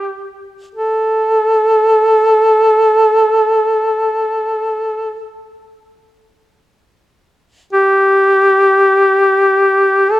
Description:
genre	caucasian folk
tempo	free time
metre	none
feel	none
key	unclear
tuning	A4 = 438 Hz
part	warm duduk	solo	0.0-10.2 s	G4 to A4	-10 LUFS	equal	none
room	moderate concert hall reverb, RT60 2.1 s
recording	none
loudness	-10 LUFS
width	side -16 dB against mid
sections	0.0-10.2 A section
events	slowing down 0.6-10.2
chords	none

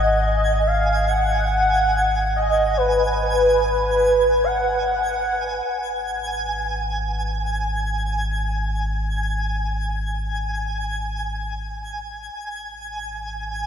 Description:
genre	ambient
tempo	free time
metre	none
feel	none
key	G# minor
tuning	A4 = 441 Hz
part	breathy flute-like synth lead	melody	0.0-5.6 s	B4 to F#5	-19 LUFS	equal	ensemble chorus, ping-pong delay
part	warm sub bass	bass	0.0-13.7 s	G#1	-26 LUFS	equal	none
part	twinkling granular texture	texture	0.0-13.7 s	G#5	-28 LUFS	right 1 dB	built-in reverb
room	wet cathedral reverb, RT60 6.0 s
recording	in a vast, echoing space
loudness	-19 LUFS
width	side -8 dB against mid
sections	0.0-13.7 A section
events	fade-out on sub bass 0.0-13.7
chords	0.0 G#m7; 5.7 N.C.

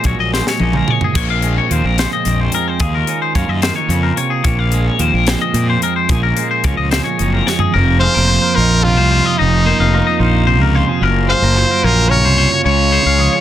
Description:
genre	math rock and midwest emo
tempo	73 BPM (dotted quarters)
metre	6/8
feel	straight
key	Bb minor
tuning	A4 = 440 Hz
part	twelve-string electric guitar	accompaniment	0.0-13.4 s	F2 to F4	-19 LUFS	right 6 dB	spring reverb
part	twangy electric guitar	arpeggios	0.0-13.4 s	Ab4 to F5	-18 LUFS	left 9 dB	tape echo
part	fuzz fingered electric bass	bass	0.0-13.3 s	F1 to Bb2	-16 LUFS	equal	overdrive
part	crisp fusion drum kit	drums	0.0-7.7 s	crash cymbal, hi-hat, kick drum, snare drum, toms	-19 LUFS	equal	none
part	brilliant trumpet	melody	8.0-13.4 s	Eb4 to Db5	-15 LUFS	equal	none
room	little or no reverb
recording	dense, heavily limited modern master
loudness	-12 LUFS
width	side -11 dB against mid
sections	0.0-7.7 A section; 7.7-13.4 B section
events	drum fill 0.3-1.1, 7.5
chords	0.0 Gbadd9/Bb; 1.1 Bbm11; 2.8 Ebm11; 4.4 Bbm11; 6.1 Bbm7; 7.7 F7sus4; 11.0 Gbmaj7; 12.7 Dbmaj7

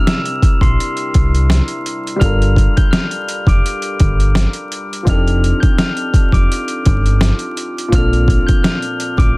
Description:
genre	hip hop, boom-bap hip-hop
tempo	84 BPM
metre	4/4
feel	swing 54% on 16ths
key	G minor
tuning	A4 = 442 Hz
part	glockenspiel with soft plastic mallets	melody	0.0-9.4 s	C6 to G7	-22 LUFS	left 2 dB	high-pass filter, low-pass filter, tape echo
part	warm upright piano	accompaniment	0.0-9.4 s	Bb2 to Bb4	-22 LUFS	equal	cassette tape, high-pass filter, low-pass filter
part	boom bap sampler-style drum kit	drums	0.1-9.3 s	hi-hat, kick drum, snare drum	-14 LUFS	equal	overdrive
part	deep dub fingered electric bass	bass	0.6-9.3 s	F1 to C2	-14 LUFS	equal	none
room	little or no reverb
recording	dense, heavily limited modern master, vinyl crackle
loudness	-12 LUFS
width	side -23 dB against mid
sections	0.0-2.2 A section; 2.2-9.4 A section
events	none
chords	0.0 C7; 2.2 Gm7; 5.1 F13; 7.9 Bbmaj7

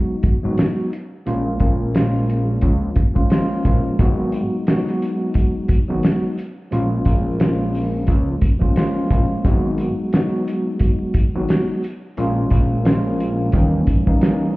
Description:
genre	hip hop, boom-bap hip-hop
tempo	88 BPM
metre	4/4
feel	swing 57% on 16ths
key	G# dorian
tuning	A4 = 440 Hz
part	mellow tine electric piano	accompaniment	0.0-14.5 s	E3 to F#4	-21 LUFS	equal	medium stereo tremolo, high-pass filter, low-pass filter
part	cloth-damped thuddy drum kit	drums	0.2-14.4 s	hi-hat, kick drum, snare drum	-18 LUFS	equal	none
part	fat analog bass	bass	0.4-13.8 s	G#1 to D#2	-20 LUFS	equal	none
part	sleigh bells	percussion	4.0-14.4 s	none	-50 LUFS	left 1 dB	none
room	small room reverb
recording	heard muffled through a wall, club ambience, vinyl crackle, EQ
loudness	-16 LUFS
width	side -20 dB against mid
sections	0.0-14.6 A section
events	none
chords	0.0 G#m7; 1.3 A#m7; 4.0 G#m7; 6.7 A#m7; 9.4 G#m7; 12.2 A#m7; 13.5 D#7b9

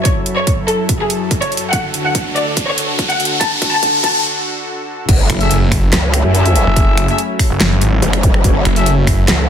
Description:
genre	heavy wobble dubstep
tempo	143 BPM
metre	4/4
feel	half-time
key	F# minor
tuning	A4 = 440 Hz
part	lush unison pad	sustained chords	0.0-9.5 s	D2 to A4	-22 LUFS	equal	chorus, sidechain pumping
part	riser, impact and zap	sound effects	1.2-8.3 s	none	-22 LUFS	equal	none
part	clear studio violin section	melody	0.1-4.2 s	G#4 to A5	-18 LUFS	left 1 dB	dub echo
part	dubstep drum kit	drums	0.1-9.4 s	crash cymbal, finger snaps, handclaps, hi-hat, snare drum	-18 LUFS	equal	soft clipping on snare
part	electronic kick drum	drums	0.1-9.2 s	none	-16 LUFS	equal	none
part	growl bass	bass	5.1-9.5 s	F#1 to F#2	-14 LUFS	equal	chorus, overdrive
part	snarling distorted saw bass	bass	5.3-9.3 s	F#1 to G#1	-14 LUFS	equal	distortion, overdrive
part	mellow brass ensemble	stabs	5.4-8.9 s	G#4 to E5	-20 LUFS	left 4 dB	dub echo
room	light reverb, digital ambience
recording	dense, heavily limited modern master, high-pass filter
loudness	-12 LUFS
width	side -8 dB against mid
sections	0.0-5.1 A section; 5.1-9.5 B section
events	build-up 0.0-5.1; filter sweep 0.0-5.1; riser 1.2-4.2; drum fill 1.7-4.2; break 4.2-5.1; drop 5.1-9.5; impact 5.1-6.8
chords	0.0 F#m7; 1.7 D; 5.1 F#m7

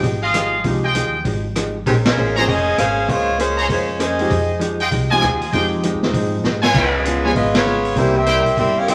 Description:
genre	jazz, big band swing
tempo	197 BPM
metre	4/4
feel	swing 63% on 8ths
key	F minor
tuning	A4 = 437 Hz
part	hollow-body jazz guitar	accompaniment	0.0-8.9 s	C3 to C5	-27 LUFS	equal	none
part	warm concert grand piano	accompaniment	0.0-8.1 s	E3 to Ab4	-25 LUFS	equal	none
part	upright bass	bass	0.0-8.9 s	F1 to Ab2	-26 LUFS	equal	none
part	vintage drum kit	drums	0.0-8.9 s	crash cymbal, hi-hat, kick drum, ride cymbal, rim click, snare drum	-26 LUFS	equal	none
part	bright trumpet section	stabs	0.2-8.4 s	E4 to Bb5	-22 LUFS	equal	none
part	warm saxophone section	melody	1.9-4.6, 6.8-8.9 s	Eb3 to F5	-20 LUFS	equal	none
room	wet studio reverb, RT60 0.9 s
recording	vinyl crackle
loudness	-18 LUFS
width	mono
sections	0.0-8.9 A section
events	band accent 2.0, 7.5; drum fill 6.4-6.7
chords	0.0 Fm9; 1.9 Bbm9; 4.3 Fm9; 6.7 Db7; 8.0 C7

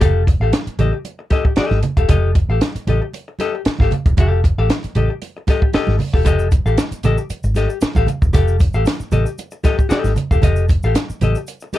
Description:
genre	funk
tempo	115 BPM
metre	4/4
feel	straight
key	F mixolydian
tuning	A4 = 438 Hz
part	hollow-body jazz guitar	accompaniment	0.0-11.8 s	G4 to F5	-21 LUFS	left 6 dB	none
part	vintage muted fingered electric bass	bass	0.0-11.3 s	E1 to A1	-17 LUFS	equal	none
part	compact cocktail drum kit	drums	0.0-11.8 s	hi-hat, kick drum, snare drum	-17 LUFS	equal	none
part	congas	percussion	0.0-11.8 s	none	-25 LUFS	right 4 dB	none
part	tube shaker	percussion	6.3-11.8 s	none	-42 LUFS	equal	none
room	little or no reverb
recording	dark, warm production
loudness	-15 LUFS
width	side -14 dB against mid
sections	0.0-11.8 A section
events	none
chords	0.0 F9

